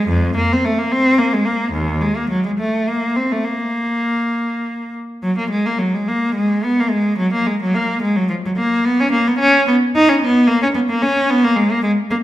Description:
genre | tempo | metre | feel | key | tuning
classical, baroque-style suite movement for unaccompanied cello | 72 BPM (dotted quarters) | 6/8 | rubato | unclear | A4 = 440 Hz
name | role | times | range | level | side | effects
rich cello | solo | 0.0-12.2 s | Eb2 to Eb4 | -15 LUFS | equal | none
room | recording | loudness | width
wet recital hall reverb, RT60 1.6 s | minimal, uncompressed stereo recording | -15 LUFS | side -14 dB against mid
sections
0.0-5.2 A section; 5.2-12.2 A section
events
none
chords
none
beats
| 0.08 0.92 | 1.73 2.58 | 3.46 4.34 | 5.23 6.07 | 6.91 7.73 | 8.56 9.38 | 10.20 11.01 | 11.83

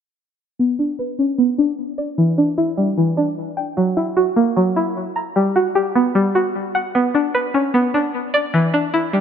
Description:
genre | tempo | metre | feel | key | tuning
hip hop | 151 BPM | 4/4 | half-time | B harmonic minor | A4 = 440 Hz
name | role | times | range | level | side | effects
string-like resonator pluck | arpeggios | 0.6-9.2 s | E3 to A#5 | -16 LUFS | equal | chorus, low-pass filter, ping-pong delay
room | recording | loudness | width
moderate plate reverb, RT60 3.0 s | none | -16 LUFS | side -8 dB against mid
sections
0.6-9.2 A section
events
filter sweep on synth pluck 0.6-9.2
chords
0.6 Bmadd9; 2.2 Em7; 3.8 F#7; 5.4 Gmaj7; 6.9 Bmadd9; 8.5 E7(no3)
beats
| 0.59 0.99 1.39 1.78 | 2.18 2.58 2.98 3.37 | 3.77 4.17 4.56 4.96 | 5.36 5.76 6.15 6.55 | 6.95 7.34 7.74 8.14 | 8.54 8.94

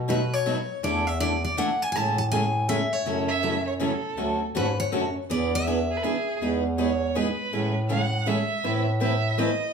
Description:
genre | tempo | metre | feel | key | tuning
acoustic string swing (jazz manouche) | 161 BPM | 3/4 | swing 63% on 8ths | unclear | A4 = 440 Hz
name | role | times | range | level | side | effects
mellow bass clarinet | bass | 0.0-9.5 s | D2 to B2 | -28 LUFS | equal | none
picked steel-string acoustic guitar | melody | 0.1-6.2 s | B4 to A5 | -27 LUFS | left 1 dB | none
picked steel-string acoustic guitar | accompaniment | 0.1-9.5 s | B2 to B4 | -29 LUFS | left 2 dB | none
picked steel-string acoustic guitar | accompaniment | 0.1-9.5 s | B2 to B4 | -31 LUFS | right 4 dB | none
rich violin | second line | 3.3-9.7 s | G#4 to F#5 | -29 LUFS | right 4 dB | none
room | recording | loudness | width
wet large studio reverb, RT60 0.9 s | band playing live in one room | -23 LUFS | side -6 dB against mid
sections
0.0-6.4 A section; 6.4-9.7 B section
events
violin solo 6.4-9.7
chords
0.0 B7; 0.8 E7sus4; 1.9 Amaj7; 3.1 F#m7; 4.2 Dmaj7; 5.3 E7; 6.4 Emaj7; 7.5 Amaj7; 8.6 Amadd9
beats
0.08 0.45 | 0.83 1.20 1.57 | 1.94 2.32 2.69 | 3.06 3.43 3.81 | 4.18 4.55 4.92 | 5.29 5.66 6.03 | 6.41 6.78 7.15 | 7.52 7.89 8.26 | 8.63 9.00 9.38

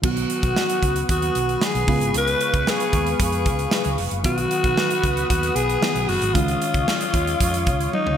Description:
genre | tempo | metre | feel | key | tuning
1980s-style pop | 114 BPM | 4/4 | straight | unclear | A4 = 440 Hz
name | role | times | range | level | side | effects
mellow FM electric piano | accompaniment | 0.0-8.2 s | C#3 to F#4 | -28 LUFS | equal | chorus, phaser
lush unison pad | sustained chords | 0.2-8.2 s | B4 to D#6 | -28 LUFS | right 1 dB | chorus, phaser
hollow-body short-scale fingered electric bass | bass | 0.0-8.2 s | E#1 to E#2 | -26 LUFS | right 1 dB | none
modern studio drum kit | drums | 0.0-8.2 s | crash cymbal, hi-hat, kick drum, snare drum, toms | -24 LUFS | right 1 dB | gated reverb
raspy alto saxophone | melody | 0.1-8.2 s | D#4 to B4 | -23 LUFS | left 2 dB | ping-pong delay
room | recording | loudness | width
moderate plate reverb, RT60 2.2 s | bright 1980s-style digital production | -18 LUFS | side -9 dB against mid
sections
0.0-8.2 A section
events
drum fill 7.9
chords
0.0 B; 1.9 C#7; 4.2 B; 6.3 C#add9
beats
| 0.04 0.56 1.09 1.61 | 2.14 2.67 3.19 3.72 | 4.25 4.77 5.30 5.82 | 6.35 6.88 7.40 7.93

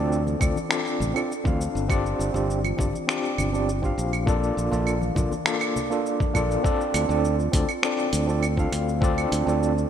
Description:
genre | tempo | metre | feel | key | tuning
sunset chillout | 101 BPM | 4/4 | straight | D minor | A4 = 441 Hz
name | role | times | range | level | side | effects
overdriven tine electric piano | accompaniment | 0.0-9.7 s | Bb3 to F5 | -25 LUFS | moving between left 4 dB and right 4 dB | medium tremolo, auto-pan, digital delay
modern bright fingered electric bass | bass | 0.0-9.8 s | G1 to D2 | -26 LUFS | equal | none
dusty soul sampler-style drum kit | drums | 0.1-9.9 s | claves, finger snaps, hi-hat, shaker | -30 LUFS | right 2 dB | overdrive, studio ambience
congas | percussion | 0.3-6.3 s | none | -36 LUFS | left 3 dB | none
electronic kick drum | drums | 0.4-9.1 s | none | -25 LUFS | equal | overdrive, studio ambience
room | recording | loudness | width
moderate lush hall reverb, RT60 2.0 s, digital ambience | rough home demo mix | -22 LUFS | side -9 dB against mid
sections
0.0-6.6 A section; 6.6-9.9 B section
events
none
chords
0.0 Dm7; 1.9 G7sus4; 4.3 Bbmaj7; 6.6 Dm7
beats
0.11 0.71 1.30 | 1.90 2.49 3.08 3.68 | 4.27 4.87 5.46 6.05 | 6.65 7.24 7.84 8.43 | 9.02 9.62

